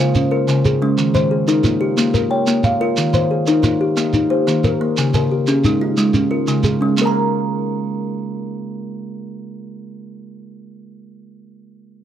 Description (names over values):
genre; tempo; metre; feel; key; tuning
southern african traditional, mbira-style interlocking cycle; 120 BPM (dotted quarters); 12/8; straight; unclear; A4 = 441 Hz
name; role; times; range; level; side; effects
kalimba; arpeggios; 0.0-10.7 s; Db3 to Bb5; -18 LUFS; left 3 dB; none
kalimba; arpeggios; 0.0-10.7 s; Db3 to Bb5; -21 LUFS; right 4 dB; none
shekere; percussion; 0.1-7.1 s; none; -21 LUFS; right 2 dB; none
room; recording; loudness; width
moderate booth ambience, RT60 0.2 s; dry, close 1970s-style studio recording; -15 LUFS; side -10 dB against mid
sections
0.0-7.0 A section; 7.0-11.0 B section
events
none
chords
0.0 Db; 1.0 Eb; 2.0 Bbm; 3.0 Eb; 5.0 Db; 7.0 N.C.